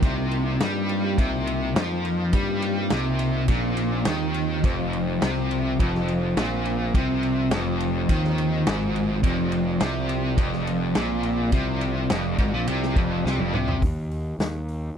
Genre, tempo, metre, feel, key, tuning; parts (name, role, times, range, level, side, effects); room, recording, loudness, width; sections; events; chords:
psychedelic rock; 104 BPM; 4/4; straight; A4 = 440 Hz
percussive tonewheel organ; sustained chords; 0.0-13.8 s; F3 to D5; -33 LUFS; right 4 dB; chorus vibrato, slow rotary speaker
biting overdriven guitar; riff; 0.0-13.8 s; F2 to G3; -24 LUFS; left 1 dB; harmonic tremolo
fuzz picked electric bass; bass; 0.0-14.9 s; F1 to G2; -28 LUFS; equal; overdrive
vintage drum kit; drums; 0.0-14.8 s; hi-hat, kick drum, ride cymbal, snare drum, toms; -26 LUFS; equal
little or no reverb; -21 LUFS; side -8 dB against mid
0.0-13.8 A section; 13.8-15.0 B section
drum fill 13.2-13.8
0.0 Cm7; 4.6 F5; 13.8 N.C.